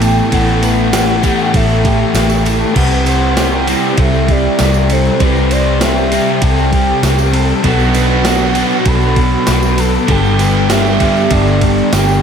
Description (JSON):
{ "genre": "rock, shoegaze and dream pop", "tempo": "98 BPM", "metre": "4/4", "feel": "straight", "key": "unclear", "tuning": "A4 = 444 Hz", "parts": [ { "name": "pure breathy sine lead", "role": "melody", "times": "0.0-12.2 s", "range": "B4 to B5", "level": "-20 LUFS", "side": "right 1 dB", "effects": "chorus, tape echo" }, { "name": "electric guitar through a small old amp", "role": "arpeggios", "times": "0.0-12.2 s", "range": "F#4 to C5", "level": "-20 LUFS", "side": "right 1 dB", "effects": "ensemble chorus, tape echo" }, { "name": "biting overdriven guitar", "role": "riff", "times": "0.0-12.2 s", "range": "B2 to A4", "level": "-20 LUFS", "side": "right 10 dB", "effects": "reverse reverb" }, { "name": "overdriven electric guitar", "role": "riff", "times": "0.0-12.2 s", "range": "G2 to C4", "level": "-19 LUFS", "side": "equal", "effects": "none" }, { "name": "thick fuzz guitar", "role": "riff", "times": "0.0-12.2 s", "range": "G2 to C4", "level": "-18 LUFS", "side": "left 10 dB", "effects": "distortion, wide subtle chorus" }, { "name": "vintage muted fingered electric bass", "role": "bass", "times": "0.0-12.2 s", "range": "G1 to C2", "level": "-15 LUFS", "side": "equal", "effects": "none" }, { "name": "gated 80s digital drum machine", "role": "drums", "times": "0.0-12.1 s", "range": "crash cymbal, kick drum, ride cymbal, snare drum", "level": "-18 LUFS", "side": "right 1 dB", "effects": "gated reverb, gated reverb snare, overdrive" }, { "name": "tambourine", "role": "percussion", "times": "0.0-12.2 s", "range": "none", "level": "-31 LUFS", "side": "right 12 dB", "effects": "none" } ], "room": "moderate huge ambient reverb, RT60 4.3 s", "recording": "dreamy mix soaked in reverb", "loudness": "-10 LUFS", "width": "side -7 dB against mid", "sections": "0.0-12.2 A section", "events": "none", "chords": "0.0 Asus2; 2.8 C; 7.6 Bm7; 10.1 G" }